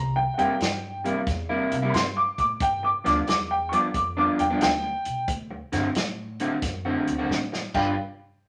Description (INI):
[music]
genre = electric blues shuffle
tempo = 90 BPM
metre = 4/4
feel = swing 67% on 8ths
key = G mixolydian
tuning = A4 = 441 Hz
[part]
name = warm upright piano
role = second line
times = 0.0-8.0 s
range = F#5 to D6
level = -26 LUFS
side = equal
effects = none
[part]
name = upright bass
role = bass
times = 0.0-7.9 s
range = G1 to A2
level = -36 LUFS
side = equal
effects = none
[part]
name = electric guitar through a small old amp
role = riff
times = 0.2-7.9 s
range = G2 to B4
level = -29 LUFS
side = equal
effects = none
[part]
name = vintage drum kit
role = drums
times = 0.4-7.8 s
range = crash cymbal, hi-hat, kick drum, snare drum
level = -32 LUFS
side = equal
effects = none
[sound]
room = wet studio reverb, RT60 0.6 s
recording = none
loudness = -25 LUFS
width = mono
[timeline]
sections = 0.0-8.0 A section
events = upright piano solo 0.0-8.0; drum fill 7.3-8.0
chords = 0.0 C7; 2.6 G7; 5.3 D7; 7.6 G7; 8.0 N.C.